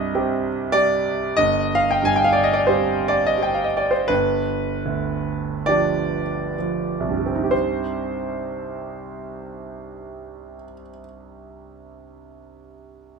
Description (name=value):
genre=classical, romantic nocturne for solo piano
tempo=31-50 BPM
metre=4/4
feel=rubato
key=C minor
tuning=A4 = 440 Hz
part: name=warm concert grand piano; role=solo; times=0.0-13.2 s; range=G1 to Ab5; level=-20 LUFS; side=right 1 dB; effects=none
room=light reverb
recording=close, detailed microphones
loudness=-19 LUFS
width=side -5 dB against mid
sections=0.0-7.5 A section; 7.5-13.2 B section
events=slowing down 0.0-7.5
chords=0.0 Cm; 1.4 C5/G; 4.1 G7; 7.5 Cm